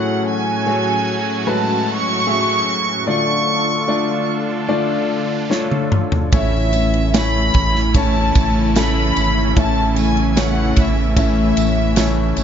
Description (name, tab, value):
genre	pop ballad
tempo	74 BPM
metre	4/4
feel	straight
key	A major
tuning	A4 = 440 Hz
part	warm studio violin section	melody	0.0-12.3 s	E5 to C#6	-20 LUFS	equal	digital delay
part	clear grand piano	accompaniment	0.0-12.4 s	A2 to E5	-21 LUFS	left 4 dB	none
part	sweeping resonant pad	sustained chords	0.0-12.4 s	A2 to A4	-25 LUFS	right 3 dB	chorus
part	modern studio drum kit	drums	5.5-12.4 s	kick drum, ride cymbal, snare drum, toms	-19 LUFS	right 1 dB	none
part	clear symphonic cello section	second line	6.3-12.4 s	E2 to A3	-24 LUFS	right 6 dB	none
part	picked steel-string acoustic guitar	arpeggios	6.3-12.4 s	A2 to C#5	-26 LUFS	left 9 dB	none
part	sub bass with octave	bass	6.3-12.4 s	G#1 to A1	-20 LUFS	right 1 dB	none
part	tambourine	percussion	6.3-12.4 s	none	-33 LUFS	right 14 dB	none
room	studio ambience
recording	nothing above 7.5 kHz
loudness	-15 LUFS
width	side -8 dB against mid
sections	0.0-12.4 A section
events	drum fill 5.5-6.3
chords	0.0 F#madd9/A; 3.1 Dm; 6.3 A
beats	0.67 1.47 2.27 | 3.08 3.88 4.70 5.51 | 6.33 7.14 7.95 8.76 | 9.56 10.37 11.17 11.97